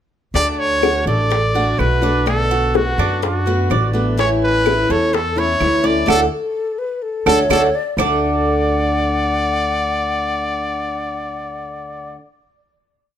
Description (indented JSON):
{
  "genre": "latin, Cuban son and guajira",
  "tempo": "126 BPM",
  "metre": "4/4",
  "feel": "straight",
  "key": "D major",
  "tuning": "A4 = 439 Hz",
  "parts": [
    { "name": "picked steel-string acoustic guitar", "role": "accompaniment", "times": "0.3-12.2 s", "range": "B2 to F#4", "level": "-22 LUFS", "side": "left 2 dB", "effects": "none" },
    { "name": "upright bass", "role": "bass", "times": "0.3-12.1 s", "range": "A1 to F#2", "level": "-22 LUFS", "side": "equal", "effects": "none" },
    { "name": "brilliant trumpet", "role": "melody", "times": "0.4-12.2 s", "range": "F#4 to D5", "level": "-20 LUFS", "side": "equal", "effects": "plate reverb" },
    { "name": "Cuban tres", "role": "arpeggios", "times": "0.4-12.2 s", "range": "C#4 to D5", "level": "-22 LUFS", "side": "right 5 dB", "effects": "none" },
    { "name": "bongos", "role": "percussion", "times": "0.4-8.1 s", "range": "none", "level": "-23 LUFS", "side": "left 6 dB", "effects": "none" },
    { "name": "claves", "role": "percussion", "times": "0.8-8.1 s", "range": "none", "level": "-26 LUFS", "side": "right 6 dB", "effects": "none" },
    { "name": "mellow hollow silver concert flute", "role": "second line", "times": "6.3-12.2 s", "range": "A4 to F#5", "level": "-23 LUFS", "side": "left 4 dB", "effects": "none" }
  ],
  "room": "moderate studio reverb, RT60 0.6 s",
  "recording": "none",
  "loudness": "-15 LUFS",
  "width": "side -9 dB against mid",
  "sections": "0.4-8.0 A section; 8.0-11.8 final chord",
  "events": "band accent 6.1-8.0; drum fill 7.0-8.0",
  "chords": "0.4 Bm7; 4.2 A; 6.1 D"
}